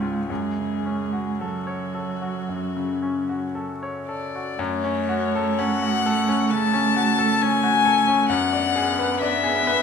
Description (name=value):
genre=classical, slow romantic movement for piano trio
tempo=53-68 BPM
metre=4/4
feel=rubato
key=F# minor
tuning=A4 = 440 Hz
part: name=warm violin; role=melody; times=0.0-9.8 s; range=F#4 to A5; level=-24 LUFS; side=left 7 dB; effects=none
part: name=dark cello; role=second line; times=0.0-9.8 s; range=F#3 to B3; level=-26 LUFS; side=right 6 dB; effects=none
part: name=bright grand piano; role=accompaniment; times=0.0-9.8 s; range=C#2 to C#5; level=-25 LUFS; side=left 2 dB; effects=none
room=wet recital hall reverb, RT60 1.4 s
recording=none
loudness=-20 LUFS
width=side -6 dB against mid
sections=0.0-4.6 A section; 4.6-9.8 B section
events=none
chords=0.3 F#m; 8.3 G#m7b5/F#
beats=| 0.29 1.40 2.49 3.55 | 4.59 5.60 6.50 7.41 | 8.30 9.21